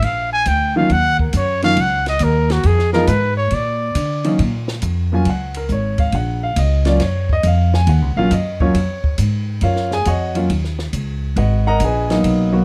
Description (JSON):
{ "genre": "jazz, small-group swing and bop", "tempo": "138 BPM", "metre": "4/4", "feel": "swing 67% on 8ths", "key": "Eb minor", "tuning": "A4 = 440 Hz", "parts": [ { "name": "warm trumpet", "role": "melody", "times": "0.0-4.3 s", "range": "Gb4 to Ab5", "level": "-20 LUFS", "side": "equal", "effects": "plate reverb" }, { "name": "upright bass", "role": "bass", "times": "0.0-12.6 s", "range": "Ab1 to D3", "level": "-20 LUFS", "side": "equal", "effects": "none" }, { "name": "compact cocktail drum kit", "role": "drums", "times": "0.0-12.4 s", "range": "hi-hat, kick drum, ride cymbal, snare drum", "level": "-28 LUFS", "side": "equal", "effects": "none" }, { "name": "warm upright piano", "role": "accompaniment", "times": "0.8-12.6 s", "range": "Eb3 to Bb5", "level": "-21 LUFS", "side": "equal", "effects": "none" } ], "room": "light reverb", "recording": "dark, warm production", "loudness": "-17 LUFS", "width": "mono", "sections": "0.0-4.4 A section; 4.4-12.6 A section", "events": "trumpet solo 0.0-4.4", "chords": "0.0 Bb; 0.9 Ebm7; 2.6 Fm7b5; 3.5 Bb; 4.4 Ebm9; 11.4 Abm9", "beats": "0.03 0.46 | 0.90 1.33 1.77 2.21 | 2.64 3.08 3.52 3.95 | 4.39 4.82 5.26 5.70 | 6.13 6.57 7.01 7.44 | 7.88 8.31 8.75 9.19 | 9.62 10.06 10.49 10.93 | 11.37 11.80 12.24" }